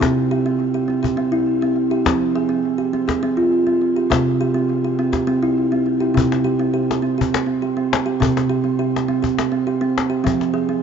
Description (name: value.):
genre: world meditative, meditative tuned percussion.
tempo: 205 BPM (eighths).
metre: 7/8.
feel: straight.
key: C major.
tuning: A4 = 438 Hz.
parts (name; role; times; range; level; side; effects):
kalimba; arpeggios; 0.0-10.8 s; C3 to Ab4; -17 LUFS; right 2 dB; tape echo, shimmer reverb.
cajon; percussion; 0.0-10.6 s; none; -22 LUFS; left 6 dB; none.
room: wet echo chamber reverb, RT60 1.7 s, small room ambience.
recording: nothing above 7.5 kHz.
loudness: -17 LUFS.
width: side -7 dB against mid.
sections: 0.0-6.2 A section; 6.2-10.8 B section.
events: none.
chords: 0.0 C; 2.1 Fm; 4.1 C; 6.2 C5; 10.3 Fm.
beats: | 0.01 0.31 0.60 0.89 1.18 1.47 1.76 | 2.06 2.35 2.64 2.93 3.23 3.52 3.81 | 4.10 4.39 4.69 4.98 5.27 5.57 5.86 | 6.15 6.45 6.74 7.03 7.32 7.62 7.91 | 8.20 8.50 8.79 9.08 9.38 9.67 9.96 | 10.26 10.55.